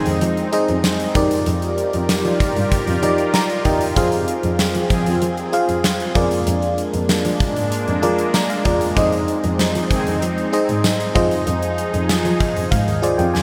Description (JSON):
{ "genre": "1980s-style pop", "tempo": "96 BPM", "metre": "4/4", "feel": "straight", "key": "F dorian", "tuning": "A4 = 440 Hz", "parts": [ { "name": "FM electric piano", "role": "accompaniment", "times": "0.0-13.4 s", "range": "Eb4 to Bb5", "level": "-23 LUFS", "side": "equal", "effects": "chorus" }, { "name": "sweeping resonant pad", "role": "sustained chords", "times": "0.0-13.4 s", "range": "F3 to D5", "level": "-27 LUFS", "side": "equal", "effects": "chorus" }, { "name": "analog synth brass", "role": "stabs", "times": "0.0-0.2, 4.0-5.2, 9.0-10.2 s", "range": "Eb3 to Ab4", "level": "-33 LUFS", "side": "equal", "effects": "none" }, { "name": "warm double bass", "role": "bass", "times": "0.1-13.4 s", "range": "Eb2 to F3", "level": "-26 LUFS", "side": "equal", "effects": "none" }, { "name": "gated 80s drum kit", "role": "drums", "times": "0.1-13.4 s", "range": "hi-hat, kick drum, snare drum, tambourine", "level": "-24 LUFS", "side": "equal", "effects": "none" } ], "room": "wet huge ambient reverb, RT60 8.1 s", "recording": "dreamy mix soaked in reverb", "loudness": "-19 LUFS", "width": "mono", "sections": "0.0-13.4 A section", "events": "FM electric piano fill 3.0-4.0, 8.0-9.0, 12.1-13.4", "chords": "0.0 Ab/F; 1.2 Ebmaj7/F; 4.0 Fm; 6.2 Bb7/F; 9.0 Ab/F; 11.2 Fm7" }